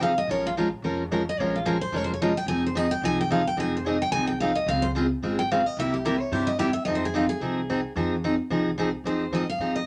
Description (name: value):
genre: acoustic string swing (jazz manouche)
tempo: 219 BPM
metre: 4/4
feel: swing 56% on 8ths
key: F minor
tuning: A4 = 436 Hz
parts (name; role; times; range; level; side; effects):
- picked steel-string acoustic guitar; melody; 0.0-9.9 s; F4 to Ab5; -29 LUFS; equal; none
- picked steel-string acoustic guitar; accompaniment; 0.0-9.8 s; C3 to Bb4; -28 LUFS; equal; none
- upright bass; bass; 0.0-9.9 s; F1 to Ab2; -38 LUFS; equal; none
room: wet club reverb, RT60 0.5 s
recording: faint mains hum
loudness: -26 LUFS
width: mono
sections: 0.0-9.1 A section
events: steel-string acoustic guitar solo 0.0-9.1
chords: 0.3 Bbm7; 2.5 Fm7; 4.7 Dbmaj7; 5.8 C7; 6.9 Fm7; 9.1 Fm9